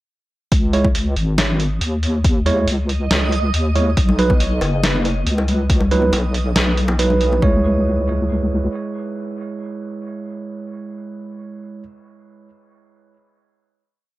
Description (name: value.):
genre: deep dubstep.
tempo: 139 BPM.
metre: 4/4.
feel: half-time.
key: C# minor.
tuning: A4 = 440 Hz.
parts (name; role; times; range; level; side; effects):
deep soft wobble bass; bass; 0.5-8.7 s; F#1 to D#2; -18 LUFS; equal; chorus.
electronic kick drum; drums; 0.5-7.5 s; none; -17 LUFS; equal; overdrive.
trip hop sampler-style drum kit; drums; 0.5-7.3 s; hi-hat, snare drum; -22 LUFS; equal; none.
backwards swelling texture; texture; 1.8-7.4 s; D#5; -30 LUFS; right 1 dB; built-in reverb.
bell-like tine electric piano; stabs; 0.7-11.8 s; F#3 to C#5; -22 LUFS; right 3 dB; dub echo.
congas and bongos; percussion; 4.1-7.4 s; none; -25 LUFS; left 2 dB; dub echo.
room: light reverb, digital ambience.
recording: none.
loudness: -15 LUFS.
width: side -17 dB against mid.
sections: 0.5-7.4 drop; 7.4-10.9 final chord.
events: drop 0.5-7.4.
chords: 0.5 C#m; 4.0 B; 7.4 C#m.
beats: | 0.52 0.95 1.38 1.81 | 2.24 2.67 3.11 3.54 | 3.97 4.40 4.83 5.26 | 5.70 6.13 6.56 6.99 | 7.42 7.86 8.29 8.72 | 9.15 9.58 10.01 10.45.